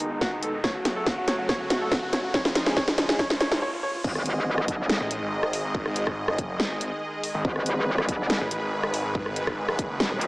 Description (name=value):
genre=heavy wobble dubstep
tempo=141 BPM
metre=4/4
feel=half-time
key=G# phrygian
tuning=A4 = 436 Hz
part: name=clear baby grand piano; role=melody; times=0.0-4.0 s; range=D#4 to C#5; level=-30 LUFS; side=equal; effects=digital delay
part: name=supersaw chords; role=sustained chords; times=0.0-10.3 s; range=E#2 to D#5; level=-31 LUFS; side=equal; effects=sidechain pumping, low-pass filter
part: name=dubstep drum kit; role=drums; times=0.0-10.3 s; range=crash cymbal, hi-hat, rim click, snare drum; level=-26 LUFS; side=equal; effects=none
part: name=riser and sub drop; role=sound effects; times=0.0-5.7 s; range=none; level=-39 LUFS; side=equal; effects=none
part: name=electronic kick drum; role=drums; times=0.2-9.9 s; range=none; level=-33 LUFS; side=equal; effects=none
part: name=metallic wobble bass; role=bass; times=4.0-10.3 s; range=D#1 to B1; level=-26 LUFS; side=equal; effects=chorus, overdrive
part: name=snarling distorted saw bass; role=bass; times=5.0-10.0 s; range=F#1 to A1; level=-30 LUFS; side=equal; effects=distortion, overdrive
room=moderate plate reverb, RT60 2.1 s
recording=small speaker sound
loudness=-24 LUFS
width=side -23 dB against mid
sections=0.0-4.0 A section; 4.0-10.3 B section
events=build-up 0.0-4.0; drum fill 0.0-3.6; riser 0.0-4.0; filter sweep on supersaw synth 0.0-4.0; break 3.6-4.0; drop 4.0-10.3; impact 4.0-5.7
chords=0.0 G#m; 0.6 F#m; 2.3 C#add9/E#; 4.0 G#5